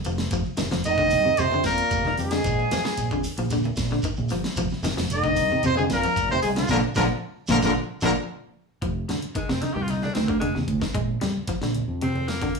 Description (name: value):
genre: afrobeat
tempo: 113 BPM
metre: 4/4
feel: straight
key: F dorian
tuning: A4 = 441 Hz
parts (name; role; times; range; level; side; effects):
- dubstep drum kit; drums; 0.0-12.6 s; hi-hat, kick drum, ride cymbal, snare drum; -30 LUFS; right 1 dB; none
- shekere; percussion; 0.0-8.1 s; none; -36 LUFS; right 3 dB; none
- semi-hollow electric guitar; arpeggios; 0.1-12.6 s; Bb2 to Ab3; -27 LUFS; left 3 dB; none
- fingered electric bass; bass; 0.1-12.5 s; F1 to F2; -29 LUFS; right 1 dB; none
- congas; percussion; 0.3-12.3 s; none; -34 LUFS; right 4 dB; none
- bright trumpet; melody; 0.9-8.1 s; F4 to Eb5; -24 LUFS; equal; none
- clear trombone; second line; 0.9-8.1 s; F3 to Eb4; -31 LUFS; right 4 dB; none
- muted trombone section; second line; 0.9-8.1 s; F2 to Eb3; -30 LUFS; equal; none
- raspy tenor saxophone; melody; 9.4-12.5 s; Ab3 to G4; -31 LUFS; equal; none
room: moderate studio reverb, RT60 0.7 s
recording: band playing live in one room, small room ambience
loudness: -22 LUFS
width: side -4 dB against mid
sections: 0.0-8.8 A section; 8.8-12.6 B section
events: band accent 6.7-8.8; drum fill 7.8-8.8; tenor saxophone solo 8.8-12.6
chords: 0.3 F5; 2.5 Bb7; 4.6 F5; 6.7 Bb; 8.8 F5; 11.0 Bb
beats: | 0.32 0.85 1.39 1.92 | 2.45 2.98 3.51 4.05 | 4.58 5.11 5.64 6.17 | 6.70 7.24 7.77 8.30 | 8.83 9.36 9.89 10.43 | 10.96 11.49 12.02 12.56